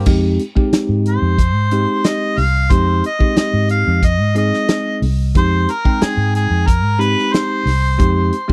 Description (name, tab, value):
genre	straight-eighth soul blues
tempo	91 BPM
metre	4/4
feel	straight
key	F minor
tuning	A4 = 440 Hz
part	vintage muted fingered electric bass	bass	0.0-8.3 s	C2 to Ab2	-19 LUFS	equal	none
part	bell-like tine electric piano	accompaniment	0.1-8.5 s	Ab3 to G5	-22 LUFS	equal	subtle chorus
part	warm soul drum kit	drums	0.1-8.5 s	crash cymbal, hi-hat, kick drum, snare drum	-18 LUFS	equal	none
part	mellow harmonica	melody	1.1-8.5 s	Ab4 to F5	-22 LUFS	equal	overdrive
room	little or no reverb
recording	dry, close 1970s-style studio recording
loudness	-16 LUFS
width	mono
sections	0.1-8.5 A section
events	none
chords	0.1 Fm7